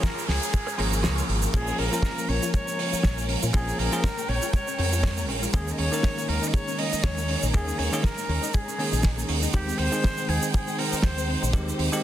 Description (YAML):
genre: nu-disco, nu disco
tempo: 120 BPM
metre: 4/4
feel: swing 56% on 16ths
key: Bb dorian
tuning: A4 = 438 Hz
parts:
  - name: breathy bright jazz flute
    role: melody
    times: 0.0-11.4 s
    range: G4 to Eb5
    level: -32 LUFS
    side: left 1 dB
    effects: dub echo
  - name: bell-like tine electric piano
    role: accompaniment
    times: 0.0-12.0 s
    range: Eb3 to Bb4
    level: -31 LUFS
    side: equal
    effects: sidechain pumping, ping-pong delay
  - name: warm studio string section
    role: sustained chords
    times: 0.0-12.0 s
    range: Ab3 to G5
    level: -34 LUFS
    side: equal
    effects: sidechain pumping
  - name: direct-recorded clean electric guitar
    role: riff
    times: 0.0-1.5 s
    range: F4 to Db5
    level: -36 LUFS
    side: right 2 dB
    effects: analog chorus, ping-pong delay
  - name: damped 70s drum kit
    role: drums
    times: 0.0-12.0 s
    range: crash cymbal, hi-hat, shaker, snare drum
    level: -30 LUFS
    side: right 4 dB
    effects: studio reverb
  - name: kick drum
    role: drums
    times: 0.0-11.6 s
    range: none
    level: -23 LUFS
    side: equal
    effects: studio reverb
  - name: noise sweep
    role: sound effects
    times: 0.0-1.5 s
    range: none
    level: -36 LUFS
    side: right 1 dB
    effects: none
  - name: fingered electric bass with an envelope filter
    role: bass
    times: 0.3-11.9 s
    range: Ab1 to Bb2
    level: -28 LUFS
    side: equal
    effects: none
  - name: analog pluck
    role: arpeggios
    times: 1.5-12.0 s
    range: G3 to F4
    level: -36 LUFS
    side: left 4 dB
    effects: chorus, sidechain pumping, dub echo
room: light reverb, studio ambience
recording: dense, heavily limited modern master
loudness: -23 LUFS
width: side -12 dB against mid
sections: 0.0-12.0 A section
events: noise sweep 0.0-1.5; kick drops out 1.0-1.5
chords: 0.0 Db6; 1.5 Bbm7; 5.5 Eb7sus4; 9.5 Abmaj7/Eb